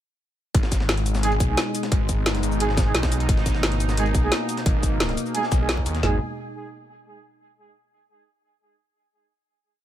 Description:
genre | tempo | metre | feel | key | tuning
dark technical drum and bass | 175 BPM | 4/4 | straight | G# minor | A4 = 439 Hz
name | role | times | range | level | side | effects
sweeping resonant pad | sustained chords | 0.5-6.2 s | B2 to D#4 | -29 LUFS | equal | chorus, sidechain pumping
snarling distorted saw bass | bass | 0.5-6.2 s | G#1 to D#2 | -24 LUFS | equal | distortion, tube saturation
breakbeat sampler-style drum kit | drums | 0.5-6.0 s | hi-hat, snare drum | -33 LUFS | left 1 dB | high-pass filter on hats, high-pass filter on snare, high-pass filter on room
drum and bass drum kit | drums | 0.5-6.1 s | kick drum, snare drum, toms | -22 LUFS | equal | none
drum and bass drum kit | drums | 0.5-6.0 s | cabasa, hi-hat, snare drum | -26 LUFS | equal | none
mellow brass ensemble | stabs | 1.2-6.2 s | G#3 to G#4 | -29 LUFS | right 3 dB | tape echo
room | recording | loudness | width
digital ambience | none | -20 LUFS | side -12 dB against mid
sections
0.5-6.0 drop; 6.0-7.4 final chord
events
drop 0.5-6.0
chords
0.5 G#m; 6.0 G#5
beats
| 0.55 0.89 1.23 1.57 | 1.92 2.26 2.60 2.95 | 3.29 3.63 3.97 4.32 | 4.66 5.00 5.35 5.69 | 6.03

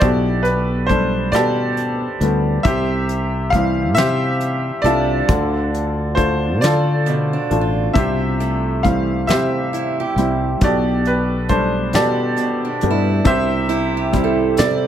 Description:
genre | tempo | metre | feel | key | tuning
acoustic folk-pop ballad | 45 BPM (dotted quarters) | 6/8 | straight | C major | A4 = 439 Hz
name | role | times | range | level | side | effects
clear grand piano | melody | 0.0-14.9 s | B2 to F5 | -18 LUFS | equal | plate reverb
picked acoustic archtop guitar | arpeggios | 0.0-14.9 s | B2 to D5 | -24 LUFS | right 6 dB | none
sustaining fretless electric bass | bass | 0.0-14.9 s | A1 to D3 | -21 LUFS | equal | none
soft brush drum kit | drums | 0.0-14.8 s | hi-hat, kick drum, rim click, snare drum | -21 LUFS | equal | none
room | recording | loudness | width
light reverb | none | -16 LUFS | side -10 dB against mid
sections
0.0-14.9 A section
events
none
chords
0.0 Gadd9/B; 2.7 C; 5.3 Dm; 8.0 C; 10.6 Gadd9/B; 13.3 C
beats
| 0.02 1.34 | 2.65 3.97 | 5.29 6.62 | 7.96 9.30 | 10.62 11.95 | 13.26 14.59

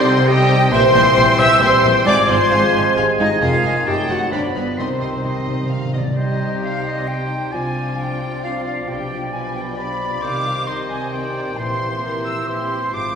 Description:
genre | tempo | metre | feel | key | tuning
classical | 133 BPM | 3/4 | straight | C minor | A4 = 440 Hz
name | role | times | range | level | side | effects
warm symphonic violin section | melody | 0.0-13.2 s | B4 to E6 | -27 LUFS | left 2 dB | none
bright silver concert flute | second line | 0.0-13.2 s | B4 to E6 | -23 LUFS | equal | none
clear oboe | second line | 0.0-13.2 s | C5 to C6 | -24 LUFS | equal | none
warm clarinet | second line | 0.0-13.2 s | B3 to E5 | -26 LUFS | left 3 dB | none
warm symphonic violin section | second line | 0.0-13.2 s | F4 to C6 | -29 LUFS | left 2 dB | none
dark symphonic viola section | accompaniment | 0.0-13.2 s | B3 to E5 | -23 LUFS | right 2 dB | none
mellow bassoon | accompaniment | 0.0-13.2 s | C3 to G3 | -28 LUFS | equal | none
dark French horn section | sustained chords | 0.0-13.2 s | Eb3 to Ab4 | -29 LUFS | equal | none
mellow trombone section | sustained chords | 0.0-5.9 s | D3 to A3 | -26 LUFS | right 3 dB | none
concert harp | arpeggios | 0.0-13.2 s | F2 to F5 | -28 LUFS | left 3 dB | none
warm symphonic cello section | bass | 0.0-13.2 s | F2 to C3 | -28 LUFS | right 1 dB | none
warm symphonic double bass section | bass | 0.0-13.2 s | F1 to C2 | -27 LUFS | equal | none
timpani | percussion | 4.8-6.1 s | C3 | -25 LUFS | right 2 dB | none
room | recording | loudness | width
wet scoring stage reverb, RT60 1.9 s | heard from further back in the room | -15 LUFS | side -6 dB against mid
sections
0.0-6.2 A section; 6.2-13.2 B section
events
timpani fill 4.8-6.2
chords
0.0 Cm; 0.7 C7/Bb; 2.1 Fm/Ab; 3.4 Fm7; 3.9 F#dim7; 4.3 G7; 4.8 Cm; 7.5 Dm7b5/C; 8.9 G7/B; 10.2 Cm; 11.6 C7/Bb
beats
0.26 | 0.72 1.16 1.61 | 2.06 2.51 2.96 | 3.41 3.86 4.32 | 4.78 5.24 5.70 | 6.17 6.62 7.08 | 7.53 7.98 8.43 | 8.88 9.33 9.78 | 10.22 10.67 11.12 | 11.58 12.03 12.48 | 12.93

